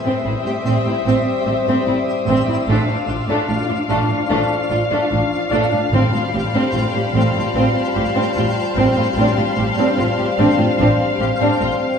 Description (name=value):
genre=cinematic, suspense film score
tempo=74 BPM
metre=4/4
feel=straight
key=unclear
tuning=A4 = 440 Hz
part: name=dark studio violin section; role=melody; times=0.0-12.0 s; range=E5 to F5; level=-25 LUFS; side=left 4 dB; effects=none
part: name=dark studio viola section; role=accompaniment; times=0.0-11.7 s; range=C4 to D4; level=-23 LUFS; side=right 2 dB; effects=none
part: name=dark French horn section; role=sustained chords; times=0.0-12.0 s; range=F3 to F4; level=-24 LUFS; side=left 3 dB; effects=none
part: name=twinkling granular texture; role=sustained chords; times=0.0-12.0 s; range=D4 to F5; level=-26 LUFS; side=left 1 dB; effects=built-in reverb
part: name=clear studio violin section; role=texture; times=0.0-12.0 s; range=A5 to D#6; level=-31 LUFS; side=left 3 dB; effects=none
part: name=dark studio violin section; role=second line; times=0.1-11.7 s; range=A3 to G4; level=-22 LUFS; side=equal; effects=none
part: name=rich studio cello section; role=bass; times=0.1-11.7 s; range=A2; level=-24 LUFS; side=right 2 dB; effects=none
part: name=dark studio double bass section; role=bass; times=0.3-11.7 s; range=A1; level=-23 LUFS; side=right 2 dB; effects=none
part: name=timpani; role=percussion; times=5.9-7.1 s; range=A2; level=-23 LUFS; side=equal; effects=none
room=wet recital hall reverb, RT60 1.5 s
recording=recorded in a church or concert hall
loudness=-15 LUFS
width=side -7 dB against mid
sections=0.0-12.0 A section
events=none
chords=0.0 Am7; 2.7 Dm/A; 5.9 Fadd9/A